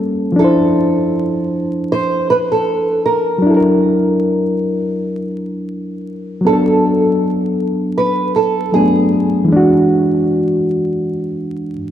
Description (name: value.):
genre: hip hop.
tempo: 79 BPM.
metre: 4/4.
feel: swing 58% on 16ths.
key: unclear.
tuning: A4 = 440 Hz.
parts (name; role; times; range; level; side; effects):
reed electric piano; accompaniment; 0.0-11.9 s; E3 to C5; -14 LUFS; equal; cassette tape.
nylon-string guitar; melody; 0.4-9.5 s; G#4 to C5; -18 LUFS; right 2 dB; lush chorus.
room: wet plate reverb, RT60 2.8 s.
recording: dreamy mix soaked in reverb, vinyl crackle.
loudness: -13 LUFS.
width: side -10 dB against mid.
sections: 0.0-11.9 A section.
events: none.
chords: 0.4 Dm9; 3.4 F#aug7; 6.5 Bm7; 9.5 E9.